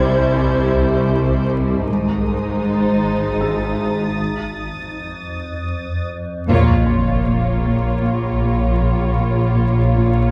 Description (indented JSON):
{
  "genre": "cinematic, suspense film score",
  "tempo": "78 BPM",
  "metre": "3/4",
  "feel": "straight",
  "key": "Bb minor from 6.5 s",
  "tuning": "A4 = 440 Hz",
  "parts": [
    { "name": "muted studio violin section", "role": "melody", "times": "0.0-10.3 s", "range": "C5 to Db5", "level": "-28 LUFS", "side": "equal", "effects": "none" },
    { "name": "muted studio violin section", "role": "second line", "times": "0.0-10.3 s", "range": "D#4 to F4", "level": "-29 LUFS", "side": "equal", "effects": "none" },
    { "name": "muted studio viola section", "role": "accompaniment", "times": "0.0-10.3 s", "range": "G3 to Bb3", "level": "-28 LUFS", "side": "equal", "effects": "none" },
    { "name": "muted studio cello section", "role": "bass", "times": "0.0-10.3 s", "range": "G#2 to C3", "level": "-23 LUFS", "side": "equal", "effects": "none" },
    { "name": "swarming drone", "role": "drone", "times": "0.0-10.3 s", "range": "G#1 to F2", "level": "-25 LUFS", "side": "equal", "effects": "built-in reverb" },
    { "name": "felt-muted upright piano", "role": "texture", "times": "0.0-10.3 s", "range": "G4 to F#6", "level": "-35 LUFS", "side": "equal", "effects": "none" },
    { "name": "muted studio violin section", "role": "texture", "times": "0.0-6.1 s", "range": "D#6 to A6", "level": "-34 LUFS", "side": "equal", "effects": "none" },
    { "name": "muted studio double bass section", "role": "bass", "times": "1.9-2.6, 6.5-10.3 s", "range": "G#1 to Bb1", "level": "-24 LUFS", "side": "equal", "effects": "none" },
    { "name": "muted studio cello section", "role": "riff", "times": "6.5-10.2 s", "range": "Bb2", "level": "-25 LUFS", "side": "equal", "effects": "none" },
    { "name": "sub drop", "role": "sound effects", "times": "6.5-8.8 s", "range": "none", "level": "-25 LUFS", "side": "equal", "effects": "none" }
  ],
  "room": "moderate scoring stage reverb, RT60 1.7 s",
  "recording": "dark, warm production, vinyl crackle",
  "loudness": "-18 LUFS",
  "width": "mono",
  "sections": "0.0-6.5 A section; 6.5-10.3 B section",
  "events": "break 4.2-6.5; band accent 6.5-7.3; impact 6.5-8.8",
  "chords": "0.0 C; 1.9 G#; 4.2 F7; 6.5 Bbm"
}